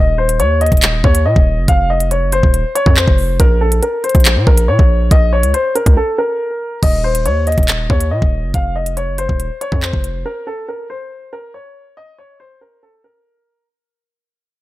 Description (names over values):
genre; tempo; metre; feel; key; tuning
hip hop, drill; 140 BPM; 4/4; half-time; unclear; A4 = 442 Hz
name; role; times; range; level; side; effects
dark upright piano; melody; 0.0-13.6 s; A4 to F5; -18 LUFS; left 2 dB; none
distorted 808-style bass; bass; 0.0-10.2 s; Eb1 to Bb2; -15 LUFS; equal; distortion
drill drum kit; drums; 0.3-10.1 s; crash cymbal, handclaps, hi-hat, kick drum; -13 LUFS; equal; none
room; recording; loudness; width
digital ambience; none; -11 LUFS; side -16 dB against mid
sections
0.0-6.8 A section; 6.8-13.7 B section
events
break 6.0-6.8; fade-out 6.8-13.7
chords
0.0 N.C.; 1.7 F5; 3.4 N.C.; 8.5 F5; 10.3 N.C.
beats
0.40 0.83 1.25 | 1.68 2.11 2.54 2.97 | 3.40 3.83 4.25 4.68 | 5.11 5.54 5.97 6.40 | 6.83 7.25 7.68 8.11 | 8.54 8.97 9.40 9.83 | 10.26 10.68 11.11 11.54 | 11.97 12.40 12.83 13.26